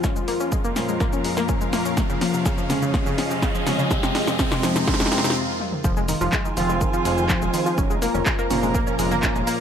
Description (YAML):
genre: melodic techno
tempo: 124 BPM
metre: 4/4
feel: straight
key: F minor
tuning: A4 = 440 Hz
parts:
  - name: deep dark ambient pad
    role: sustained chords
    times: 0.0-9.6 s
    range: F2 to Bb5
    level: -30 LUFS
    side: left 3 dB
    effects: chorus, built-in reverb, sidechain pumping
  - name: analog pluck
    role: arpeggios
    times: 0.0-9.5 s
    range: C3 to Db5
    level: -26 LUFS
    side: left 2 dB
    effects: chorus, sidechain pumping, ping-pong delay
  - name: analog synth brass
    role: stabs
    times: 0.0-9.6 s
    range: Bb2 to F4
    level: -28 LUFS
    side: right 2 dB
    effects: chorus, sidechain pumping, ping-pong delay
  - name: bowed-like drone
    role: drone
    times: 0.0-5.4 s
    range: F2 to F3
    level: -37 LUFS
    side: left 1 dB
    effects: none
  - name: electronic kick drum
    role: drums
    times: 0.0-9.3 s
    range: none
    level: -24 LUFS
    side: equal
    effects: none
  - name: punchy analog drum machine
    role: drums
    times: 0.0-9.6 s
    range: handclaps, hi-hat, shaker, snare drum, toms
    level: -27 LUFS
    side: equal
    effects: sidechain pumping on perc, sidechain pumping on hats, sidechain pumping on toms
  - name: riser and swell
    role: sound effects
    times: 0.9-5.8 s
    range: none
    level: -31 LUFS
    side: equal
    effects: none
  - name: dark studio string section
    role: texture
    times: 0.0-9.6 s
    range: F3 to C6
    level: -29 LUFS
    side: right 2 dB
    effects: sidechain pumping
  - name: fat analog bass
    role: bass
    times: 5.8-9.4 s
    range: Eb1 to F1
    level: -28 LUFS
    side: equal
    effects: sidechain pumping
room: moderate scoring stage reverb, RT60 1.6 s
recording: none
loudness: -19 LUFS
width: side -8 dB against mid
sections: 0.0-5.8 A section; 5.8-9.6 B section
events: build-up 0.0-5.8; drum fill 0.0-5.4, 5.6; filter sweep on analog polysynth 0.0-5.8; riser 0.9-5.4; swell 4.9-5.8; stop 5.4-5.8; drop 5.8-9.6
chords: 0.0 Bbmadd9/F; 2.0 Db/F; 3.9 Abadd9/F; 5.8 Fm; 7.8 Bbmadd9/F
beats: | 0.04 0.52 1.00 1.49 | 1.97 2.46 2.94 3.42 | 3.91 4.39 4.88 5.36 | 5.84 6.33 6.81 7.30 | 7.78 8.26 8.75 9.23